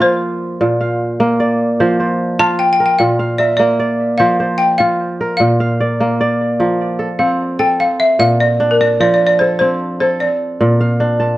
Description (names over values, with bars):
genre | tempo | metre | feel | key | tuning
west african traditional | 100 BPM (dotted quarters) | 12/8 | straight | F major | A4 = 441 Hz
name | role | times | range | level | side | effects
balafon | melody | 0.0-11.2 s | Bb4 to A5 | -14 LUFS | left 1 dB | none
kora | arpeggios | 0.0-11.4 s | Bb2 to A5 | -15 LUFS | right 1 dB | tape echo
room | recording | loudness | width
moderate studio reverb, RT60 0.6 s | worn, warbling old tape, cassette tape, warbly pitch drift | -12 LUFS | side -16 dB against mid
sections
0.0-6.6 A section; 6.6-11.4 B section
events
none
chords
0.0 F5; 0.6 Bb; 1.8 F5; 3.0 Bb; 4.2 F5; 5.4 Bb; 6.6 F; 7.8 Bb; 9.0 F; 10.2 Bb